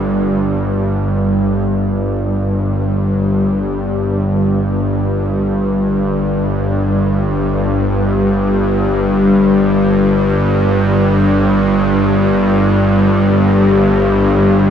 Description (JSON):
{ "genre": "ambient", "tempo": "free time", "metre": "none", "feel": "none", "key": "unclear", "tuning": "A4 = 439 Hz", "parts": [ { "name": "bowed-like drone", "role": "solo", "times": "0.0-14.7 s", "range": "G1 to G2", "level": "-12 LUFS", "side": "equal", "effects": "built-in reverb, diffuse ambient delay" } ], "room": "wet cathedral reverb, RT60 5.2 s", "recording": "cassette tape", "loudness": "-12 LUFS", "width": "side -8 dB against mid", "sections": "0.0-1.7 A section; 1.7-14.7 B section", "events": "none", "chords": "none", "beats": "free time" }